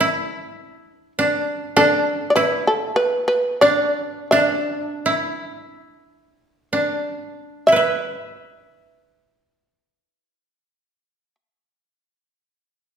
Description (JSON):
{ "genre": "japanese traditional, Japanese chamber music", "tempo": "30-51 BPM", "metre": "2/4", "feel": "rubato", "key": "unclear", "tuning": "A4 = 439 Hz", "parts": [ { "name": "shamisen", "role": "melody", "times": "0.0-11.3 s", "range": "A4 to E5", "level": "-18 LUFS", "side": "equal", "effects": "none" }, { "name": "koto", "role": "second line", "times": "0.0-11.4 s", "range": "D4 to E5", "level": "-20 LUFS", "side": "right 1 dB", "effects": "none" } ], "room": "wet recital hall reverb, RT60 1.4 s", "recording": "recorded in a church or concert hall", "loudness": "-17 LUFS", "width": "side -8 dB against mid", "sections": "0.0-7.7 A section; 7.7-11.4 B section", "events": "slowing down 1.8-7.7", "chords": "none" }